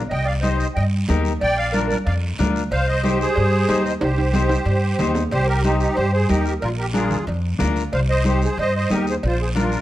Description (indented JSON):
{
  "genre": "latin, cumbia",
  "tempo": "184 BPM",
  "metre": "4/4",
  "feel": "straight",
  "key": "C minor",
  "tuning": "A4 = 440 Hz",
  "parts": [
    { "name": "upright bass", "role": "bass", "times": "0.0-9.8 s", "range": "Bb1 to G2", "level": "-21 LUFS", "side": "equal", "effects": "none" },
    { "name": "musette accordion", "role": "melody", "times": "0.1-9.8 s", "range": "Eb4 to G5", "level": "-23 LUFS", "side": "right 1 dB", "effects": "none" },
    { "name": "breathy clarinet", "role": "second line", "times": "0.1-5.1 s", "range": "G4 to Eb5", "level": "-28 LUFS", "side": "right 3 dB", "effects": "none" },
    { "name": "cowbell and timbales", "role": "percussion", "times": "0.1-9.7 s", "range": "none", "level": "-30 LUFS", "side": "right 1 dB", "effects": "none" },
    { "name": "guiro", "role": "percussion", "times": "0.1-9.8 s", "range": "none", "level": "-37 LUFS", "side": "right 3 dB", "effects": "none" },
    { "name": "clean electric guitar", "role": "accompaniment", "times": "0.4-9.8 s", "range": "D4 to Eb5", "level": "-27 LUFS", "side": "left 5 dB", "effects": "none" },
    { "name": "congas", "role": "percussion", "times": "0.4-9.7 s", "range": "none", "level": "-26 LUFS", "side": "equal", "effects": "none" }
  ],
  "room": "moderate large studio reverb, RT60 1.1 s",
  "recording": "dark, warm production",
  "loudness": "-18 LUFS",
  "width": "side -14 dB against mid",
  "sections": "0.0-5.3 A section; 5.3-9.8 A section",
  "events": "drum fill 4.0-5.3",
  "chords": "0.1 Cm; 1.4 Bb; 2.7 Cm; 6.6 Bb; 7.9 Cm; 9.2 Bb"
}